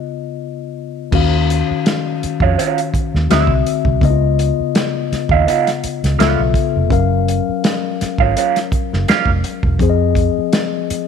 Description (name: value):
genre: R&B, neo-soul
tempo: 83 BPM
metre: 4/4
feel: swing 55% on 16ths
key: Eb minor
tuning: A4 = 438 Hz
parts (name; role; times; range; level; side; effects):
- mellow tine electric piano; accompaniment; 0.0-11.1 s; Db3 to F5; -19 LUFS; left 11 dB; medium stereo tremolo
- vintage muted fingered electric bass; bass; 1.1-10.9 s; Fb1 to F2; -17 LUFS; right 1 dB; none
- warm soul drum kit; drums; 1.1-11.1 s; crash cymbal, hi-hat, kick drum, snare drum; -18 LUFS; right 1 dB; none
- electric guitar through a small old amp; second line; 2.4-9.3 s; Gb3 to F4; -18 LUFS; right 14 dB; wah
room: light reverb, studio reverb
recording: 1960s-style stereo with parts hard left and right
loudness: -14 LUFS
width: side -7 dB against mid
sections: 0.0-1.1 A section; 1.1-11.1 B section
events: break 0.0-1.1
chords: 0.0 Db9; 1.1 Ebm9; 3.3 D9; 4.0 Db9; 6.2 Db7alt; 6.9 Gbmaj7; 9.8 Fm7